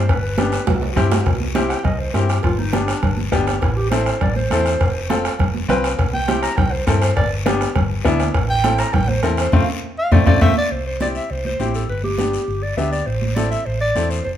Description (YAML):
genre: latin, cumbia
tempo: 203 BPM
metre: 4/4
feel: straight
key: C major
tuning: A4 = 441 Hz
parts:
  - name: mellow clarinet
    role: melody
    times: 0.0-14.3 s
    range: D4 to Bb5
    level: -23 LUFS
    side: equal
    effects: none
  - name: hollow-body short-scale fingered electric bass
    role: bass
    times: 0.0-14.4 s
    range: F1 to G2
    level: -22 LUFS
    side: equal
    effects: none
  - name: bombo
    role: percussion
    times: 0.1-10.5 s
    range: none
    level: -20 LUFS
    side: equal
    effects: none
  - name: congas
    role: percussion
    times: 0.1-14.4 s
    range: none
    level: -26 LUFS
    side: right 3 dB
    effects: none
  - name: cowbell and timbales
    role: percussion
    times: 0.1-10.5 s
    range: none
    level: -29 LUFS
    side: right 4 dB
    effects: none
  - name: guiro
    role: percussion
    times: 0.1-14.4 s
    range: none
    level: -34 LUFS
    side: left 6 dB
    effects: none
  - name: bright upright piano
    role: accompaniment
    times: 0.4-14.2 s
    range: A3 to B4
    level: -23 LUFS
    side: left 3 dB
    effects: none
room: moderate large studio reverb, RT60 1.1 s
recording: band playing live in one room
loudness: -16 LUFS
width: side -10 dB against mid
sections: 0.0-1.3 A section; 1.3-10.7 B section; 10.7-14.4 C section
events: drum fill 0.4-1.3, 9.8-10.7; clarinet solo 1.3-10.7; band accent 9.5-10.7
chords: 0.1 G; 0.7 C; 2.4 G; 3.6 Am; 4.8 F; 6.0 C; 7.2 G; 8.3 Am; 9.5 F; 10.7 C; 11.9 G; 13.1 Am